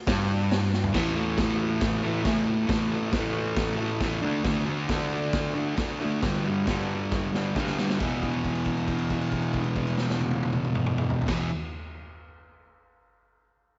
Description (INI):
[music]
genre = garage rock duo or trio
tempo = 136 BPM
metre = 4/4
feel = straight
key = E minor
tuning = A4 = 442 Hz
[part]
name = fuzz guitar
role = riff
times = 0.1-11.5 s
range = E2 to D4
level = -28 LUFS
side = equal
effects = distortion
[part]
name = raw garage drum kit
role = drums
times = 0.1-11.4 s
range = crash cymbal, hi-hat, kick drum, snare drum, toms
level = -33 LUFS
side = equal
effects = none
[sound]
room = light reverb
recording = nothing above 7.8 kHz, faint mains hum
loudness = -27 LUFS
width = mono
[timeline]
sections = 1.0-8.0 A section; 8.0-11.6 B section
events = drum fill 0.7, 7.1-8.0; held note 8.0-11.3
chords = 0.0 N.C.; 1.0 A5; 4.2 D5; 6.2 G5; 8.0 E5